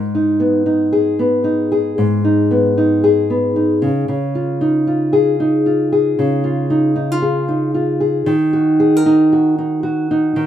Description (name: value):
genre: pop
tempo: 114 BPM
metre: 4/4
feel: swing 60% on 16ths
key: unclear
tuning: A4 = 440 Hz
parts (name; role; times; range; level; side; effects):
- nylon-string guitar; solo; 0.0-10.5 s; G#2 to A#4; -13 LUFS; equal; none
room: light reverb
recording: rough home demo mix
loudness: -13 LUFS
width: side -10 dB against mid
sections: 0.0-8.3 A section; 8.3-10.5 B section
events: none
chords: 0.0 G#m; 3.8 C#add9; 8.3 D#m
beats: 0.40 0.93 1.45 | 1.98 2.50 3.02 3.55 | 4.07 4.60 5.12 5.65 | 6.17 6.70 7.22 7.74 | 8.27 8.79 9.31 9.84 | 10.36